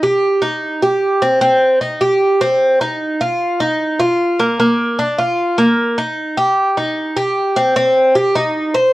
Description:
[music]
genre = latin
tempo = 151 BPM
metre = 4/4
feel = straight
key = C minor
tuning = A4 = 440 Hz
[part]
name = Cuban tres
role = solo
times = 0.0-8.9 s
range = Bb3 to C5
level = -13 LUFS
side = equal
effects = none
[sound]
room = wet studio ambience, RT60 0.5 s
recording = worn, warbling old tape, cassette tape, warbly pitch drift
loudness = -13 LUFS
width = side -17 dB against mid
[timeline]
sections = 0.0-7.8 A section; 7.8-8.9 B section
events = none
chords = none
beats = 0.22 0.62 1.02 | 1.42 1.81 2.21 2.61 | 3.01 3.40 3.80 4.20 | 4.59 4.99 5.39 5.79 | 6.18 6.58 6.97 7.37 | 7.76 8.16 8.55

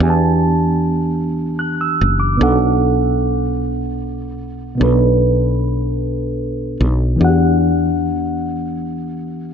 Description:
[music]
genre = slow six-eight R&B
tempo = 50 BPM (dotted quarters)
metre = 6/8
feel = straight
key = E minor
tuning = A4 = 438 Hz
[part]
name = reed electric piano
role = accompaniment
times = 0.0-9.5 s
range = B2 to F#6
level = -17 LUFS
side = equal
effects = lush chorus
[part]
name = woody fretless electric bass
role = bass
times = 0.0-9.5 s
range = F#1 to E2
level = -18 LUFS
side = equal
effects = none
[sound]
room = moderate lush hall reverb, RT60 2.0 s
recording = dreamy mix soaked in reverb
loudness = -15 LUFS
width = side -7 dB against mid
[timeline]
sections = 0.0-9.5 A section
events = none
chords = 0.0 Em9; 2.4 Bm7; 7.2 Em9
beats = | 0.00 1.20 | 2.40 3.60 | 4.80 6.00 | 7.20 8.40

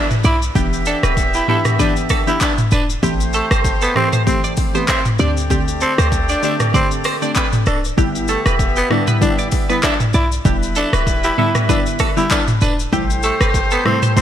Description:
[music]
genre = afrobeats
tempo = 97 BPM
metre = 4/4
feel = swing 55% on 16ths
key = E minor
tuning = A4 = 442 Hz
[part]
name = growling tenor saxophone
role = melody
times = 0.0-14.2 s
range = A3 to E4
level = -21 LUFS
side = equal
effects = ping-pong delay
[part]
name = warm horn section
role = second line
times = 0.0-14.2 s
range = G3 to E5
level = -24 LUFS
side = equal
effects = none
[part]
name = direct-recorded clean electric guitar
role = riff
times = 0.0-14.1 s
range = G4 to E5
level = -25 LUFS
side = right 6 dB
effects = analog chorus, ping-pong delay
[part]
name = downlifter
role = sound effects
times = 0.1-3.0 s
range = none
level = -38 LUFS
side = equal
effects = none
[part]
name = afro-pop drum kit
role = drums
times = 0.1-14.2 s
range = handclaps, hi-hat, kick drum, rim click, shaker, toms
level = -18 LUFS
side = equal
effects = overdrive, gated reverb
[part]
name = short 808-style bass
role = bass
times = 0.2-13.8 s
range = D1 to D2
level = -19 LUFS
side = equal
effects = none
[part]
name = glassy wavetable pluck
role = accompaniment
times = 0.6-14.2 s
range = C3 to G4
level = -23 LUFS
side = left 1 dB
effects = chorus
[sound]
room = light reverb, digital ambience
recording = bright 1980s-style digital production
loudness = -14 LUFS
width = side -10 dB against mid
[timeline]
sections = 0.0-14.2 A section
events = none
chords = 0.0 G6; 0.6 Em7; 3.0 Am7; 5.2 D7sus4; 8.0 G6; 10.5 Em7; 12.9 Am7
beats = | 0.56 1.17 1.79 2.41 | 3.03 3.65 4.27 4.88 | 5.50 6.12 6.74 7.36 | 7.98 8.60 9.21 9.83 | 10.45 11.07 11.69 12.31 | 12.93 13.54 14.16

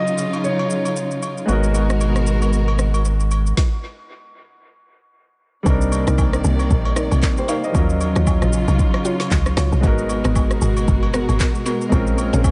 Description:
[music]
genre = amapiano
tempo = 115 BPM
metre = 4/4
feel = swing 58% on 16ths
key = unclear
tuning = A4 = 440 Hz
[part]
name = clear grand piano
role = melody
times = 0.0-1.2 s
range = Db5 to Eb5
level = -28 LUFS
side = equal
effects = dub echo
[part]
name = clear baby grand piano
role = accompaniment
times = 0.0-12.5 s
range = F3 to F5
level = -27 LUFS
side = equal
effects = dub echo
[part]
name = warm studio string section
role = sustained chords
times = 0.0-12.5 s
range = Cb3 to D5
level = -28 LUFS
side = equal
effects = none
[part]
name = deep house drum kit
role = drums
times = 0.1-12.5 s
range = handclaps, kick drum, rim click, shaker, snare drum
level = -23 LUFS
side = equal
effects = dub echo
[part]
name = agogo bells and woodblock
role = percussion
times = 0.3-12.5 s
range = none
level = -35 LUFS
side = equal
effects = dub echo
[part]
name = saturated sub bass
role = bass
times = 1.5-3.5 s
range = Ab1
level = -20 LUFS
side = equal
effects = none
[part]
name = woody log drum bass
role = bass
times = 5.7-12.5 s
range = G1 to Eb2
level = -22 LUFS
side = equal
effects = none
[part]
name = mallet-like synth pluck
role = stabs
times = 6.1-12.4 s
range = Cb4 to D5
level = -30 LUFS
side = equal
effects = chorus, dub echo
[sound]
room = light reverb, studio reverb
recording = echo-heavy mix, nothing above 10.7 kHz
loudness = -19 LUFS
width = mono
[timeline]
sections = 0.0-5.7 A section; 5.7-12.5 B section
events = stop 3.6-5.7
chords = 0.0 Ebm9; 1.5 Abm9; 3.6 N.C.; 5.7 Cm9; 7.7 Ebm9; 9.8 Abm9; 11.9 Bbm9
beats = 0.44 0.96 | 1.49 2.01 2.53 3.05 | 3.57 4.09 4.62 5.14 | 5.66 6.18 6.70 7.22 | 7.75 8.27 8.79 9.31 | 9.83 10.36 10.88 11.40 | 11.92 12.44

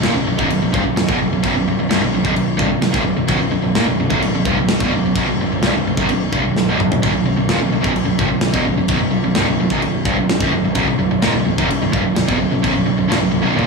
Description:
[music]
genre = heavy metal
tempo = 129 BPM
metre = 4/4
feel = straight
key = unclear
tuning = A4 = 440 Hz
[part]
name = sludgy distorted guitar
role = riff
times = 0.0-13.7 s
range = B1 to B2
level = -16 LUFS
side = right 1 dB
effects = overdrive
[part]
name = growling picked electric bass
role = bass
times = 0.0-13.7 s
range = B0 to E1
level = -23 LUFS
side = left 1 dB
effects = overdrive
[part]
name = tight metal drum kit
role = drums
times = 0.0-13.7 s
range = crash cymbal, kick drum, snare drum, toms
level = -21 LUFS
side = left 1 dB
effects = none
[sound]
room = light reverb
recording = small room reverb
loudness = -14 LUFS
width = side -3 dB against mid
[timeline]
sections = 0.0-13.7 A section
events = drum fill 6.6-7.0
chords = 0.0 B5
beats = 0.04 0.51 0.97 | 1.44 1.90 2.37 2.83 | 3.30 3.76 4.23 4.69 | 5.16 5.62 6.09 6.56 | 7.02 7.49 7.96 8.42 | 8.89 9.36 9.82 10.29 | 10.76 11.23 11.70 12.16 | 12.63 13.10 13.57

